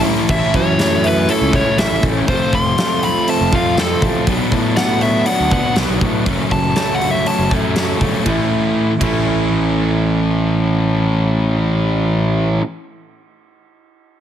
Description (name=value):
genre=quiet-loud alternative rock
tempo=120 BPM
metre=4/4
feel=straight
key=unclear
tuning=A4 = 440 Hz
part: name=fuzz guitar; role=riff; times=0.0-12.6 s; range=F#2 to F4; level=-18 LUFS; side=left 1 dB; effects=distortion
part: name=fuzz lead guitar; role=melody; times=0.3-7.5 s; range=A4 to C6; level=-20 LUFS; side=equal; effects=distortion, digital delay
part: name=electric guitar through a small old amp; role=arpeggios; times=0.3-12.6 s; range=F2 to F#4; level=-23 LUFS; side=right 2 dB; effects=wide subtle chorus, digital delay
part: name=fuzz fingered electric bass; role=bass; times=0.3-12.6 s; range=F1 to A2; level=-20 LUFS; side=right 1 dB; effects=overdrive
part: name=huge arena drum kit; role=drums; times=0.3-9.1 s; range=crash cymbal, hi-hat, kick drum, ride cymbal, snare drum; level=-20 LUFS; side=left 1 dB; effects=none
room=light reverb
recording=heavily compressed radio sound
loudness=-14 LUFS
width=side -9 dB against mid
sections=0.3-8.3 A section; 8.3-12.3 B section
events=lead electric guitar solo 0.3-8.3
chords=0.3 A; 2.3 F; 4.3 Bm; 6.3 F#m; 8.3 A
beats=| 0.29 0.79 1.28 1.78 | 2.28 2.77 3.27 3.77 | 4.27 4.76 5.26 5.76 | 6.26 6.76 7.26 7.76 | 8.26 8.76 9.26 9.76 | 10.26 10.76 11.27 11.77